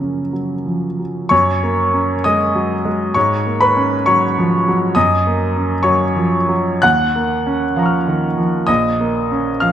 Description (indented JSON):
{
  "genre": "classical, impressionist solo piano",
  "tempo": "58-69 BPM",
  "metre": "4/4",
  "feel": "rubato",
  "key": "F# major",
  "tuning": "A4 = 440 Hz",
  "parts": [
    { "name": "clear baby grand piano", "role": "solo", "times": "0.0-9.7 s", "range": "A#1 to F#6", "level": "-14 LUFS", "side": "equal", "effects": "none" }
  ],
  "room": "moderate scoring stage reverb, RT60 2.0 s",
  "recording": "none",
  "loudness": "-14 LUFS",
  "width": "side -10 dB against mid",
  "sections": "0.0-1.3 A section; 1.3-9.7 B section",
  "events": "none",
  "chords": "0.0 F#maj7; 1.3 F#add9; 3.2 G#m11; 5.0 F#maj7; 6.8 D#m9; 8.7 A#m"
}